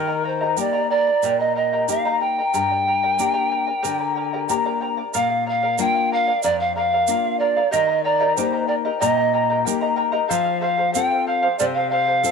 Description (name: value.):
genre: andean folk, Andean ensemble.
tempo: 92 BPM.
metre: 4/4.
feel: straight.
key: unclear.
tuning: A4 = 441 Hz.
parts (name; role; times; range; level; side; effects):
polished pan flute; melody; 0.0-12.3 s; Bb4 to G5; -20 LUFS; right 2 dB; none.
charango; accompaniment; 0.0-12.3 s; G4 to Bb5; -24 LUFS; left 2 dB; none.
nylon-string guitar; accompaniment; 0.0-12.3 s; F2 to A4; -27 LUFS; left 12 dB; none.
egg shaker; percussion; 0.6-12.3 s; none; -28 LUFS; right 22 dB; none.
room: light reverb.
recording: 1960s-style stereo with parts hard left and right.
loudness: -18 LUFS.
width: side -5 dB against mid.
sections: 0.0-5.1 A section; 5.1-12.3 B section.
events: none.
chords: 0.0 Eb; 2.5 Gm; 5.1 Bb; 7.7 Eb; 10.3 F.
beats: 0.57 1.22 1.87 | 2.52 3.17 3.83 4.48 | 5.13 5.78 6.43 7.07 | 7.72 8.37 9.02 9.66 | 10.31 10.96 11.60 12.25.